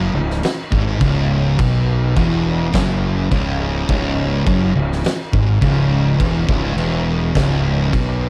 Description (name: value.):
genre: stoner and doom metal.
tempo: 104 BPM.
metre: 4/4.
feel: straight.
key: C# minor.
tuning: A4 = 439 Hz.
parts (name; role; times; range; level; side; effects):
fuzz guitar; riff; 0.0-8.3 s; C#2 to B2; -22 LUFS; equal; distortion.
thick fuzz guitar; riff; 0.0-8.3 s; C#2 to B2; -24 LUFS; equal; distortion.
fuzz fingered electric bass; bass; 0.0-8.3 s; C#1 to B1; -23 LUFS; equal; overdrive.
oversized low-tuned drum kit; drums; 0.3-8.1 s; crash cymbal, kick drum, snare drum; -24 LUFS; equal; none.
room: studio ambience.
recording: dark, warm production.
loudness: -17 LUFS.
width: mono.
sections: 0.0-8.3 A section.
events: none.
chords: 0.0 C#m.